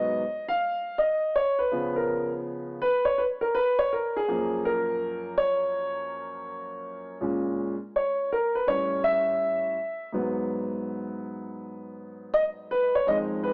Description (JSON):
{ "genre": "hip hop", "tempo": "82 BPM", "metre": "4/4", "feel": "swing 64% on 16ths", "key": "unclear", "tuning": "A4 = 440 Hz", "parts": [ { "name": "dark concert grand piano", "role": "solo", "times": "0.0-13.5 s", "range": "F2 to F5", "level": "-27 LUFS", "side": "equal", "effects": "cassette tape" } ], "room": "light reverb, small room reverb", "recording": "home recording on cassette, AM radio sound", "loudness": "-27 LUFS", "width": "mono", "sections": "0.0-13.5 A section", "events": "grand piano solo 0.0-13.5", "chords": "0.0 Abm7; 1.4 Db7; 4.3 Gbmaj7; 7.2 Bbm7; 8.7 A7; 10.1 Abm7" }